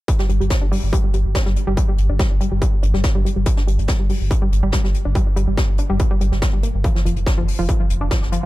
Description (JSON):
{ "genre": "driving peak-time techno", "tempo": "142 BPM", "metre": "4/4", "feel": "straight", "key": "unclear", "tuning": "A4 = 440 Hz", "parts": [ { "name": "electronic kick drum", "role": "drums", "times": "0.1-8.2 s", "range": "none", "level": "-18 LUFS", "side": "equal", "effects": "distortion" }, { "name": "jazz brush drum kit", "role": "drums", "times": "0.1-8.4 s", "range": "hi-hat, snare drum", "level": "-30 LUFS", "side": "left 2 dB", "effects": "sidechain pumping on hats, high-pass filter on hats, high-pass filter on snare, high-pass filter on room" }, { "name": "analog pluck", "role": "riff", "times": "0.2-8.5 s", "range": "F3 to D4", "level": "-25 LUFS", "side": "left 1 dB", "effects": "chorus, tube saturation, sidechain pumping, ping-pong delay" }, { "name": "saturated sub bass", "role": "bass", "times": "0.3-8.5 s", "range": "F1 to G1", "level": "-21 LUFS", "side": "equal", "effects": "tube saturation, sidechain pumping, low-pass filter" } ], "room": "small room ambience", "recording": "dark, warm production", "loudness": "-16 LUFS", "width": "side -17 dB against mid", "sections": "0.1-8.5 A section", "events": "filter sweep on synth arpeggio sound 0.1-8.5", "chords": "0.1 G5; 6.8 Dm/F" }